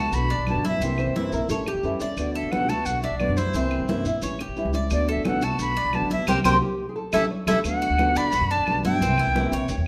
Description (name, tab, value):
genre	latin, Cuban son and guajira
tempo	176 BPM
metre	4/4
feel	straight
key	D major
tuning	A4 = 440 Hz
part	jazz flute	melody	0.0-9.8 s	C5 to B5	-28 LUFS	equal	none
part	nylon-string guitar	accompaniment	0.0-9.7 s	B2 to F#4	-31 LUFS	equal	none
part	Cuban tres	arpeggios	0.0-9.9 s	C4 to D5	-32 LUFS	equal	none
part	upright bass	bass	0.0-9.9 s	A1 to G2	-30 LUFS	equal	none
part	congas	percussion	0.1-9.9 s	none	-33 LUFS	equal	none
part	maracas	percussion	0.1-9.9 s	none	-44 LUFS	equal	none
part	claves	percussion	0.5-9.4 s	none	-39 LUFS	equal	none
part	nylon-string guitar	second line	1.0-2.1, 6.5-7.6 s	F#4 to C#5	-34 LUFS	equal	none
room	wet large studio reverb, RT60 1.4 s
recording	none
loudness	-24 LUFS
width	mono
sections	0.0-7.6 A section; 7.6-9.9 B section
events	band accent 6.3-7.6; drum fill 6.8-7.6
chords	0.1 Bm7; 0.8 C7; 1.5 A7; 2.2 D6; 2.9 Bm7; 3.5 C7; 4.2 A7; 4.9 D6; 5.6 Bm7; 6.3 C5; 7.0 A7; 7.6 D6; 8.3 Bm7; 9.0 C7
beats	0.13 0.47 | 0.81 1.15 1.50 1.84 | 2.18 2.52 2.86 3.20 | 3.55 3.89 4.23 4.57 | 4.91 5.25 5.60 5.94 | 6.28 6.62 6.96 7.30 | 7.65 7.99 8.33 8.67 | 9.01 9.35 9.70